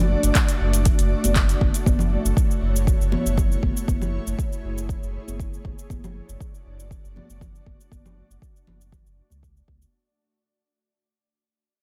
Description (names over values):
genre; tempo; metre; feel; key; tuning
afro house; 119 BPM; 4/4; straight; unclear; A4 = 440 Hz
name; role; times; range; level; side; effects
ethereal airy pad; sustained chords; 0.0-9.9 s; A3 to D5; -32 LUFS; equal; ensemble chorus, built-in reverb, sidechain pumping
warm sub bass; bass; 0.0-9.8 s; F#1 to C#2; -27 LUFS; equal; sidechain pumping
afro-pop drum kit; drums; 0.2-9.9 s; cabasa, handclaps, hi-hat; -30 LUFS; equal; none
electronic kick drum; drums; 0.4-9.8 s; none; -25 LUFS; equal; none
congas; percussion; 1.2-9.8 s; none; -32 LUFS; equal; none
room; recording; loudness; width
digital ambience; none; -22 LUFS; mono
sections
0.0-9.9 A section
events
fade-out 0.0-9.9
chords
0.0 D/F#; 1.9 F#m7; 5.9 D/F#